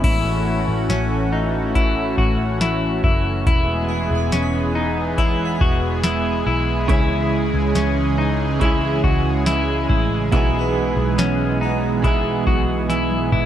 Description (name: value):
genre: dream pop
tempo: 70 BPM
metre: 4/4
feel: straight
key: E major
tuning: A4 = 441 Hz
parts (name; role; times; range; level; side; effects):
- lush unison pad; sustained chords; 0.0-13.5 s; C#3 to G#4; -23 LUFS; right 1 dB; chorus
- semi-hollow electric guitar; arpeggios; 0.0-13.5 s; C#4 to F#4; -23 LUFS; left 3 dB; wide subtle chorus, tape echo
- vintage muted picked electric bass; bass; 0.0-13.5 s; E1 to C#2; -24 LUFS; equal; none
- booming analog drum machine; drums; 0.0-13.5 s; crash cymbal, hi-hat, kick drum, snare drum, tambourine, toms; -20 LUFS; equal; none
- harpsichord; texture; 0.0-12.8 s; E4 to B5; -33 LUFS; right 2 dB; tape echo
- direct-recorded clean electric guitar; accompaniment; 6.9-13.5 s; B2 to G#4; -23 LUFS; right 5 dB; tremolo, wide subtle chorus
room: moderate concert hall reverb, RT60 2.1 s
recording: dark, warm production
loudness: -17 LUFS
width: side -10 dB against mid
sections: 0.0-13.5 A section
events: drum fill 12.9-13.5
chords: 0.0 A6; 3.5 Emaj7; 6.9 C#m; 10.3 Emaj7/B